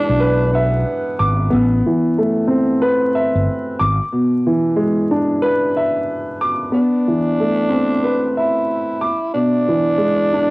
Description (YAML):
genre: hip hop, boom-bap hip-hop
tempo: 92 BPM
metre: 4/4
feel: swing 61% on 16ths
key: A harmonic minor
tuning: A4 = 440 Hz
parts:
  - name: growling tenor saxophone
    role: melody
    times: 0.0-1.5, 6.7-10.5 s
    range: B3 to E4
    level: -20 LUFS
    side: right 1 dB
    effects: high-pass filter, low-pass filter, cassette tape
  - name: dark concert grand piano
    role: accompaniment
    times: 0.0-10.5 s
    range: B2 to D6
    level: -16 LUFS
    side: equal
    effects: cassette tape, high-pass filter, low-pass filter
  - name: fretless electric bass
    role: bass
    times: 0.1-4.0 s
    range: G1 to B1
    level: -17 LUFS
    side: equal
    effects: none
room: light reverb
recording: home recording on cassette, vinyl crackle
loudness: -15 LUFS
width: side -22 dB against mid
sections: 0.0-6.7 A section; 6.7-10.5 B section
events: none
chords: 0.0 E7; 1.5 Amadd9; 3.8 E7/G#; 6.7 Amadd9; 9.0 E7